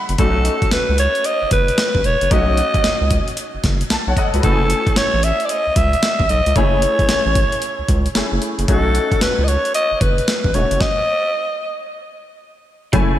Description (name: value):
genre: R&B, new jack swing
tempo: 113 BPM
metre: 4/4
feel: swing 63% on 16ths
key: unclear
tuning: A4 = 440 Hz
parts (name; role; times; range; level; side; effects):
- clear baby grand piano; accompaniment; 0.0-13.2 s; A3 to B5; -24 LUFS; left 3 dB; ensemble chorus
- round analog bass; bass; 0.1-13.2 s; E1 to C#2; -19 LUFS; equal; none
- breakbeat sampler-style drum kit; drums; 0.1-13.1 s; hi-hat, kick drum, snare drum; -19 LUFS; equal; overdrive
- breathy alto saxophone; melody; 0.2-11.9 s; A4 to E5; -19 LUFS; equal; ping-pong delay
- clean electric guitar; riff; 12.9-13.1 s; F#3; -21 LUFS; left 1 dB; ensemble chorus
room: moderate lush hall reverb, RT60 2.3 s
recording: bright 1980s-style digital production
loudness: -15 LUFS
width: side -12 dB against mid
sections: 0.0-12.9 A section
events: grand piano fill 0.0, 3.6-4.4; stop 10.8-12.9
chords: 0.2 B7; 4.4 F#m7; 8.7 B7